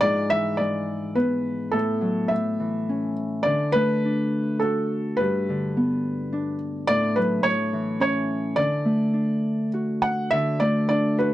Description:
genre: children's music, lullaby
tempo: 105 BPM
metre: 3/4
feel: rubato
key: D major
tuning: A4 = 440 Hz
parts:
  - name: felt-muted upright piano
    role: melody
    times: 0.0-11.3 s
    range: A4 to F#5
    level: -24 LUFS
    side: right 1 dB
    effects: none
  - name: Celtic harp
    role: accompaniment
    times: 0.0-11.3 s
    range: G2 to F#4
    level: -24 LUFS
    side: equal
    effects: none
room: light reverb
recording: dry, close 1970s-style studio recording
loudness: -21 LUFS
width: side -14 dB against mid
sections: 0.0-10.3 A section; 10.3-11.3 B section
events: none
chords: 0.0 E7/G#; 1.7 F#m/A; 2.3 A; 3.5 D; 5.2 G; 6.9 D/A; 7.4 A; 8.6 D

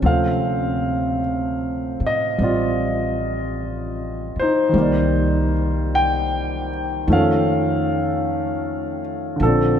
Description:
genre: jazz ballad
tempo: 51 BPM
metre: 4/4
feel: swing 68% on 8ths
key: unclear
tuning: A4 = 441 Hz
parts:
  - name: warm concert grand piano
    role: accompaniment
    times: 0.0-9.8 s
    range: C3 to G5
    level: -19 LUFS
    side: equal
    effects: none
  - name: upright bass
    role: bass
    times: 0.0-9.8 s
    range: A1 to A2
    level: -25 LUFS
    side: left 1 dB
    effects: none
room: wet cathedral reverb, RT60 7.2 s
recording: in a vast, echoing space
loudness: -18 LUFS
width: side -8 dB against mid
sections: 0.0-9.8 A section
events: none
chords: 0.0 Dm7; 4.7 Cm9; 7.1 Faug7

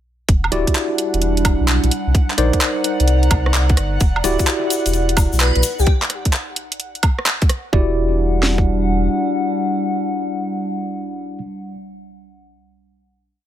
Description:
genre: UK garage, two-step garage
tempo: 129 BPM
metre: 4/4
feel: swing 67% on 16ths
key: unclear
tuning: A4 = 439 Hz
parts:
  - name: airy breathy pad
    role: sustained chords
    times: 0.3-7.7 s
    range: F#5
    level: -32 LUFS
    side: right 2 dB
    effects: chorus, sidechain pumping
  - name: saturated sub bass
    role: bass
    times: 0.3-9.1 s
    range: D1 to C2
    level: -18 LUFS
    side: equal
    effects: none
  - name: garage drum kit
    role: drums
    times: 0.3-8.7 s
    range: kick drum, snare drum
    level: -16 LUFS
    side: equal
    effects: overdrive
  - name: garage drum kit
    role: drums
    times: 0.3-7.6 s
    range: handclaps, hi-hat, rim click, woodblock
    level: -21 LUFS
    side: right 1 dB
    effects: overdrive
  - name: warbly tape-like pad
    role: texture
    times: 0.6-11.6 s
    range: G3 to Bb5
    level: -24 LUFS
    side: equal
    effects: chorus, built-in reverb, sidechain pumping
  - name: tine electric piano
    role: stabs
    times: 0.5-11.4 s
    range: Eb4 to D5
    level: -22 LUFS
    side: left 1 dB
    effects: medium stereo tremolo, tape echo
  - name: egg shaker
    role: percussion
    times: 4.0-5.9 s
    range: none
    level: -26 LUFS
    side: left 5 dB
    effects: none
  - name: airy dreamy lead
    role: melody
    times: 5.4-5.9 s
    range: G4 to B4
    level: -22 LUFS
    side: left 3 dB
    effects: chorus, tape echo
room: little or no reverb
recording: faint mains hum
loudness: -15 LUFS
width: side -11 dB against mid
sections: 0.3-7.7 drop; 7.7-11.4 final chord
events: drop 0.3-7.7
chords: 0.3 Em9; 1.9 Cm9; 4.0 Em9; 5.6 N.C.; 7.7 Em9

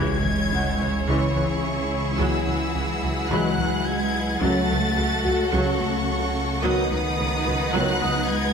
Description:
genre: cinematic, hybrid orchestral and electronic film score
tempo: 108 BPM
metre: 4/4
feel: straight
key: C# minor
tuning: A4 = 438 Hz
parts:
  - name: clear symphonic violin section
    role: melody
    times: 0.0-8.5 s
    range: C#6 to A6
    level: -29 LUFS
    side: left 2 dB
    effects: none
  - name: clear chamber violin section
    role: second line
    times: 0.0-8.5 s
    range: G#4 to F#5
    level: -29 LUFS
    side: left 1 dB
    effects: none
  - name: clear symphonic viola section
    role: accompaniment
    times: 0.0-8.5 s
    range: C#3 to F#4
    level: -30 LUFS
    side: equal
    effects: none
  - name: dark French horn section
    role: sustained chords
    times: 0.0-7.9 s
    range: B3 to F#4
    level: -32 LUFS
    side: left 3 dB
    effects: none
  - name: dark trombone section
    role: sustained chords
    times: 0.0-7.9 s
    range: C#3 to G#3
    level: -31 LUFS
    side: right 3 dB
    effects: none
  - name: glassy FM pad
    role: sustained chords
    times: 0.7-8.5 s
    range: E3 to D#5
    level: -30 LUFS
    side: left 2 dB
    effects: ensemble chorus, built-in reverb
  - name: harp-like synth pluck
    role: arpeggios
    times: 0.0-8.2 s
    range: C#3 to B4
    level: -31 LUFS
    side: left 3 dB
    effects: chorus, tape echo
  - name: rich studio cello section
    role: bass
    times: 0.0-8.5 s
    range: C#3 to A3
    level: -29 LUFS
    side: right 3 dB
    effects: none
  - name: rich studio double bass section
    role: bass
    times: 0.0-8.1 s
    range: C#2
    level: -30 LUFS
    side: right 3 dB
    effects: none
  - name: wide detuned saw bass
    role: bass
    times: 0.0-8.5 s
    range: C#2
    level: -30 LUFS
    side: equal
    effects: chorus
  - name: impact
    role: sound effects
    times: 0.0-2.2 s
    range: none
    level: -32 LUFS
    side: equal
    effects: none
  - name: felt-muted upright piano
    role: texture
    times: 0.5-8.5 s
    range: F#5 to D#6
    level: -37 LUFS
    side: left 1 dB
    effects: tape echo
room: moderate scoring stage reverb, RT60 1.6 s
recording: none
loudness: -20 LUFS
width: side -6 dB against mid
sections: 0.0-8.5 A section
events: impact 0.0-2.2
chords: 0.0 C#m; 2.2 Eadd9/C#; 4.4 F#m/C#; 6.6 B/C#

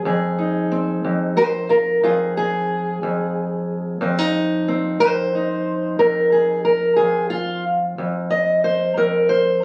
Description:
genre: acoustic country blues, solo or duo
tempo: 61 BPM (dotted quarters)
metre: 12/8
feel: straight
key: F minor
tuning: A4 = 441 Hz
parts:
  - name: fingerpicked steel-string acoustic guitar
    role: solo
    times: 0.0-9.6 s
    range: F2 to Eb5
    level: -20 LUFS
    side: equal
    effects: none
room: moderate small room reverb, RT60 0.5 s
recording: recorded on a phone in the room, club reverb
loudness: -20 LUFS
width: mono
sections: 0.0-9.6 A section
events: steel-string acoustic guitar solo 0.0-9.6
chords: 0.0 Fm7

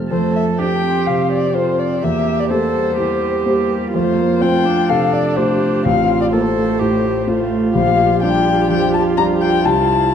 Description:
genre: quick classical-period movement for piano quartet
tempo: 126 BPM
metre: 4/4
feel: straight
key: F major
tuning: A4 = 441 Hz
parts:
  - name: warm concert grand piano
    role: accompaniment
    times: 0.0-10.1 s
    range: A1 to D5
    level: -18 LUFS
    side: left 1 dB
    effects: none
  - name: dark violin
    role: melody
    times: 0.1-10.1 s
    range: C5 to Bb5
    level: -19 LUFS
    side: left 8 dB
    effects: none
  - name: warm cello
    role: second line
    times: 0.1-10.1 s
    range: F4 to A4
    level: -20 LUFS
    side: right 6 dB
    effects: none
  - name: dark viola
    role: accompaniment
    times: 0.1-10.1 s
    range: G3 to G4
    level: -22 LUFS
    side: right 3 dB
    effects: none
room: wet recital hall reverb, RT60 1.6 s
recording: dark, warm production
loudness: -14 LUFS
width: side -8 dB against mid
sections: 0.1-10.1 A section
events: none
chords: 0.1 F; 2.0 C7/E; 3.9 F; 5.8 F/A; 7.7 Gm7/Bb

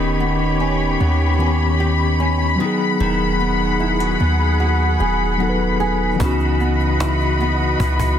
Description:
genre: contemporary R&B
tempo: 75 BPM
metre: 4/4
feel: straight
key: unclear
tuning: A4 = 440 Hz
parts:
  - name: mellow tine electric piano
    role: accompaniment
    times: 0.0-8.2 s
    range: D#3 to B4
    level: -22 LUFS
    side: left 3 dB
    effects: fast stereo tremolo
  - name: muted studio string section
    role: sustained chords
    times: 0.0-8.2 s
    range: F#4 to B5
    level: -21 LUFS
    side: left 4 dB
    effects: none
  - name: flamenco guitar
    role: arpeggios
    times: 0.0-8.2 s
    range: C#3 to G#4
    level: -24 LUFS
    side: right 7 dB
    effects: tape echo
  - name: warm 808-style bass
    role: bass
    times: 0.0-8.2 s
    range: D#1 to D#2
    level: -20 LUFS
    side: equal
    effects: none
  - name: cajon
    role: drums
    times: 6.2-8.2 s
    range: none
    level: -26 LUFS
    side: equal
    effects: none
room: light reverb, studio reverb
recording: dense, heavily limited modern master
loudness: -16 LUFS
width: side -9 dB against mid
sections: 0.0-8.2 A section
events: none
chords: 0.0 D#7b13; 2.6 G#m7/D#; 6.2 C#m11

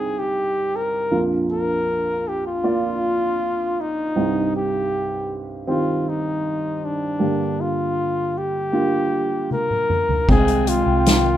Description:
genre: pop ballad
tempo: 79 BPM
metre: 4/4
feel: straight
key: C minor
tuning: A4 = 439 Hz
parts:
  - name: warm flugelhorn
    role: melody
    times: 0.0-11.4 s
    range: D4 to Bb4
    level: -22 LUFS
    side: left 1 dB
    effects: plate reverb
  - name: dark upright piano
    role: accompaniment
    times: 0.0-11.4 s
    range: Bb1 to G5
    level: -24 LUFS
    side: right 2 dB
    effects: none
  - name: soft-mallet drum kit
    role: drums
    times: 9.5-11.2 s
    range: crash cymbal, hi-hat, kick drum, snare drum, toms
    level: -20 LUFS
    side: equal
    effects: none
  - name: airy breathy pad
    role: sustained chords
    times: 10.6-11.4 s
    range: Eb3 to G5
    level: -23 LUFS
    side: right 1 dB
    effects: chorus
  - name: vintage muted fingered electric bass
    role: bass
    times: 10.3-11.4 s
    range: C2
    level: -22 LUFS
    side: equal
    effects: none
room: moderate small room reverb, RT60 0.6 s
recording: rough home demo mix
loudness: -19 LUFS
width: side -12 dB against mid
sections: 0.0-10.3 A section; 10.3-11.4 B section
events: drum fill 9.5-10.3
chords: 0.0 Cm; 1.1 Bb; 4.2 Cm; 7.2 Gm; 10.3 Abmaj7/C

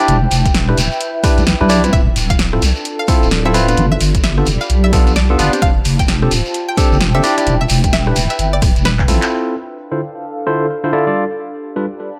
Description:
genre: UK garage, two-step garage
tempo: 130 BPM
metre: 4/4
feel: swing 61% on 16ths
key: D dorian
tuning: A4 = 440 Hz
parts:
  - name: barky tine electric piano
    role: stabs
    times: 0.0-11.8 s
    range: D3 to D5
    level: -20 LUFS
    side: equal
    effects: low-pass filter, delay
  - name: shekere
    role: percussion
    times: 0.0-9.3 s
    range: none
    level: -27 LUFS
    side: equal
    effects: none
  - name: warbly tape-like pad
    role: texture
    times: 0.0-12.2 s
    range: D4 to B5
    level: -26 LUFS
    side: equal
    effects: chorus, built-in reverb, phaser, sidechain pumping
  - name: deep soft wobble bass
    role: bass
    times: 0.1-9.2 s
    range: D1 to C2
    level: -17 LUFS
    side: equal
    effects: chorus, sidechain pumping
  - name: house drum kit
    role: drums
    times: 0.1-9.3 s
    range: handclaps, hi-hat, rim click, snare drum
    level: -23 LUFS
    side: equal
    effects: none
  - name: electronic kick drum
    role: drums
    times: 0.5-9.1 s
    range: none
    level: -18 LUFS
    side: equal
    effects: overdrive
  - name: string-like resonator pluck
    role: melody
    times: 1.9-9.2 s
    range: B4 to G5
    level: -26 LUFS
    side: equal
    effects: analog chorus, tape echo
room: light reverb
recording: none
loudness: -15 LUFS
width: mono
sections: 0.0-9.3 A section; 9.3-12.2 B section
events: drum fill 9.0-9.3; band accent 9.2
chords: 0.0 Dm9; 3.8 G9; 5.6 F6; 7.2 Dm9; 11.2 G9

